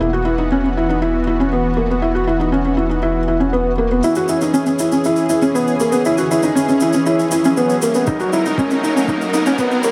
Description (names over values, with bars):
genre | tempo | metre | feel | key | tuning
piano and strings electronica | 119 BPM | 4/4 | straight | unclear | A4 = 440 Hz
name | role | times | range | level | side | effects
lush unison pad | sustained chords | 0.0-9.9 s | E3 to A#4 | -24 LUFS | equal | chorus, sidechain pumping
felt-muted upright piano | riff | 0.0-9.9 s | A#3 to F#4 | -18 LUFS | equal | digital delay
warm sub bass | bass | 0.0-4.0 s | E1 | -25 LUFS | equal | sidechain pumping
shaker | drums | 4.0-9.9 s | none | -32 LUFS | equal | high-pass filter on perc, low-pass filter on perc, high-pass filter on room, low-pass filter on room
riser | sound effects | 5.6-9.9 s | none | -30 LUFS | equal | none
electronic kick drum | drums | 8.1-9.7 s | none | -26 LUFS | equal | none
room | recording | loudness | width
moderate lush hall reverb, RT60 1.9 s, small room ambience | high-pass filter | -17 LUFS | mono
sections
0.0-4.0 A section; 4.0-9.9 B section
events
build-up 4.0-9.9; riser 5.6-9.9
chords
0.0 Esus2; 4.0 C#m; 8.1 D#m